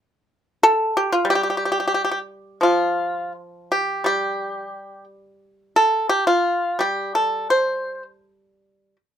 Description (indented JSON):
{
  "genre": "chinese traditional, Chinese solo plucked strings",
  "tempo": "83-94 BPM",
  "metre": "2/4",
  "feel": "rubato",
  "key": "unclear",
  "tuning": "A4 = 441 Hz",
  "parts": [
    { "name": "pipa", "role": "solo", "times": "0.6-9.0 s", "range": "F3 to C5", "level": "-18 LUFS", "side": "equal", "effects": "none" }
  ],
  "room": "little or no reverb",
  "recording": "close, detailed microphones",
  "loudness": "-18 LUFS",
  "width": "side -9 dB against mid",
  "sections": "0.0-2.6 A section; 2.6-9.2 B section",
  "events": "none",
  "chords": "none",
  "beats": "0.62 | 1.27 1.93 | 2.63 3.36 | 4.07 4.75 | 5.42 6.11 | 6.81 7.53 | 8.26"
}